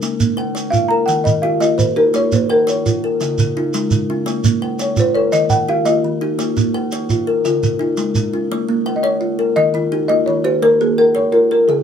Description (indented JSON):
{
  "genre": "southern african traditional, mbira-style interlocking cycle",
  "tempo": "113 BPM (dotted quarters)",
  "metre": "12/8",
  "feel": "straight",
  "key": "Bb equiheptatonic",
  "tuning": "A4 = 436 Hz",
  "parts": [
    { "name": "kalimba", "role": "arpeggios", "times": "0.0-11.8 s", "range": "Db3+43c to Db5+43c", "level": "-20 LUFS", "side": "left 5 dB", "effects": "none" },
    { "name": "shekere", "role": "percussion", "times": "0.0-8.3 s", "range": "none", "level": "-19 LUFS", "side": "right 4 dB", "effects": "none" },
    { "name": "kalimba", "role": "arpeggios", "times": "0.2-11.8 s", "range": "Db3+43c to G5-43c", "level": "-22 LUFS", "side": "right 6 dB", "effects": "none" },
    { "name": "folk marimba with medium mallets", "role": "melody", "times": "0.7-11.8 s", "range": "F4 to Bb5", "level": "-15 LUFS", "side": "left 1 dB", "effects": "none" }
  ],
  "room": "moderate studio ambience, RT60 0.5 s",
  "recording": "band playing live in one room",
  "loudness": "-14 LUFS",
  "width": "side -8 dB against mid",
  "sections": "0.0-8.5 A section; 8.5-11.8 B section",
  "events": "none",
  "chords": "0.0 Bbm; 1.1 Eb; 2.1 Bbm; 3.2 Db; 4.3 Bbm; 5.3 Eb; 6.4 Bbm; 7.4 Db; 8.5 Bbm; 9.6 Eb; 10.6 Bbm"
}